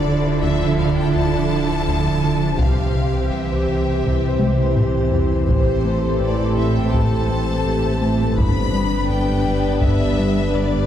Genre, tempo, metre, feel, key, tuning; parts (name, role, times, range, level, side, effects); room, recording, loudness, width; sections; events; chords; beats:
cinematic, hybrid orchestral and electronic film score; 83 BPM; 4/4; straight; A minor; A4 = 440 Hz
rich studio violin section; melody; 0.0-10.9 s; C5 to B5; -28 LUFS; left 4 dB
rich studio violin section; second line; 0.0-10.9 s; D4 to C5; -27 LUFS; left 3 dB
rich symphonic viola section; accompaniment; 0.0-10.9 s; E3 to G4; -27 LUFS; right 1 dB
analog drone; sustained chords; 0.0-10.9 s; D3 to E5; -23 LUFS; equal; chorus, phaser
warm chamber cello section; bass; 0.0-10.9 s; G2 to D3; -23 LUFS; right 3 dB
warm sub bass; bass; 0.0-10.9 s; D1 to C2; -25 LUFS; equal
round analog bass; riff; 0.1-10.8 s; C2 to A3; -24 LUFS; left 1 dB
taiko ensemble; drums; 0.8-10.5 s; -23 LUFS; equal
wet concert hall reverb, RT60 1.8 s; heard from further back in the room; -16 LUFS; side -10 dB against mid
0.0-10.9 A section
drum fill 4.4-5.5
0.0 Dmadd9; 2.6 C; 5.5 Am; 8.4 G
0.43 1.15 1.87 | 2.60 3.32 4.04 4.76 | 5.49 6.21 6.93 7.66 | 8.38 9.10 9.82 10.55